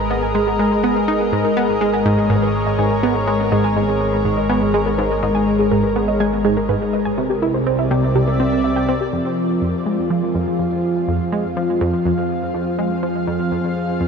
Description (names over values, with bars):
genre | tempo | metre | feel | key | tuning
ambient, sequencer-driven space music | 123 BPM | 4/4 | straight | F dorian from 9.1 s | A4 = 439 Hz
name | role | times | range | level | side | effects
lush unison pad | sustained chords | 0.0-14.1 s | C3 to F5 | -18 LUFS | equal | chorus, shimmer reverb
analog drone | bass | 0.0-14.1 s | G#1 to F2 | -27 LUFS | equal | chorus
warbly dusty pluck | arpeggios | 0.1-9.1 s | G4 to G#5 | -26 LUFS | moving between left 3 dB and right 7 dB | chorus, auto-pan, tape echo, shimmer reverb
tight sequenced synth | riff | 0.1-14.1 s | F2 to E4 | -21 LUFS | right 1 dB | chorus, tape echo, shimmer reverb
room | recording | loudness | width
wet huge ambient reverb, RT60 8.9 s | none | -16 LUFS | side -6 dB against mid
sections
0.0-9.1 A section; 9.1-14.1 B section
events
fade-in on synth arpeggio sound 0.0-9.1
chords
0.0 G#madd9; 7.2 C7; 9.1 Fm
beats
0.35 0.84 | 1.32 1.81 2.30 2.79 | 3.27 3.76 4.25 4.74 | 5.23 5.71 6.20 6.69 | 7.18 7.67 8.15 8.64 | 9.13 9.62 10.11 10.59 | 11.08 11.57 12.06 12.54 | 13.03 13.52 14.01